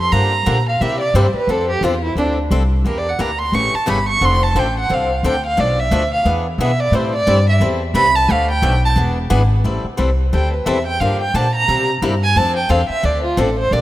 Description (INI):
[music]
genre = acoustic string swing (jazz manouche)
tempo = 177 BPM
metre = 4/4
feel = swing 59% on 8ths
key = A minor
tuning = A4 = 441 Hz
[part]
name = warm violin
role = melody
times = 0.0-13.8 s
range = D4 to C#6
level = -18 LUFS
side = right 2 dB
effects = none
[part]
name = upright bass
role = bass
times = 0.0-13.8 s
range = E1 to C3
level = -18 LUFS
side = equal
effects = none
[part]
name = picked swing-style acoustic guitar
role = accompaniment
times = 0.1-13.8 s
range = B2 to A4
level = -22 LUFS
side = left 3 dB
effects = none
[sound]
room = light reverb, small room reverb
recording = rough home demo mix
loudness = -14 LUFS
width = side -15 dB against mid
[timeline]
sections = 0.0-9.7 A section; 9.7-13.8 A section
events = violin solo 0.0-13.8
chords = 0.1 Gm7; 0.8 C7; 1.5 F6; 2.9 Em7b5; 3.5 A7; 4.2 Dm7; 5.6 Bm7b5; 6.3 E7; 6.9 Am7; 8.3 Bm7b5; 9.0 E7; 9.7 Am7; 11.0 Gm7; 11.7 C7; 12.4 F6